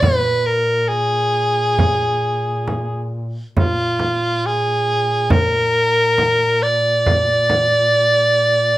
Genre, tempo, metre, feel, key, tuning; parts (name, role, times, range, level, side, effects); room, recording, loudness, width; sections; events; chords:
caucasian folk, Caucasian lament; 68 BPM; 4/4; rubato; A4 = 437 Hz
edgy soprano saxophone; melody; 0.0-8.8 s; F4 to D5; -16 LUFS; equal
mellow duduk; drone; 0.0-8.8 s; Bb2; -24 LUFS; equal
frame drum; percussion; 0.0-7.7 s; -18 LUFS; right 1 dB
light reverb; band playing live in one room; -15 LUFS; side -16 dB against mid
0.0-8.8 A section